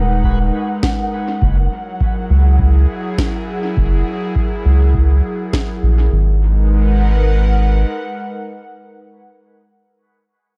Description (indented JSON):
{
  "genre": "ambient dub",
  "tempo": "102 BPM",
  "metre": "4/4",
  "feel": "swing 59% on 16ths",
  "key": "G# minor",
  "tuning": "A4 = 440 Hz",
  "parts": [
    { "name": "airy breathy pad", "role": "sustained chords", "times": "0.0-9.2 s", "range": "F#3 to F#5", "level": "-25 LUFS", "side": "equal", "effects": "chorus" },
    { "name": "round analog bass", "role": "bass", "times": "0.0-7.8 s", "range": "D#1 to C#2", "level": "-14 LUFS", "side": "equal", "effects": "none" },
    { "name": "wind-like tuned noise texture", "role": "texture", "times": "0.0-6.1 s", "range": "F#5", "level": "-31 LUFS", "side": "equal", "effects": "built-in reverb" },
    { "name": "electronic kick drum", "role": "drums", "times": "0.2-5.7 s", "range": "none", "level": "-22 LUFS", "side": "equal", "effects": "studio reverb" },
    { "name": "electronic snare drum", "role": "drums", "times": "0.8-5.7 s", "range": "none", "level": "-27 LUFS", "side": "equal", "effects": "overdrive, studio reverb, dub echo" }
  ],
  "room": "little or no reverb",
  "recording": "echo-heavy mix",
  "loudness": "-16 LUFS",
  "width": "mono",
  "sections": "0.0-6.1 A section; 6.1-8.5 B section",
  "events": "filter sweep on analog synth bass 0.0-6.1",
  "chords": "0.0 G#m7; 1.4 F#9; 6.1 G#m7"
}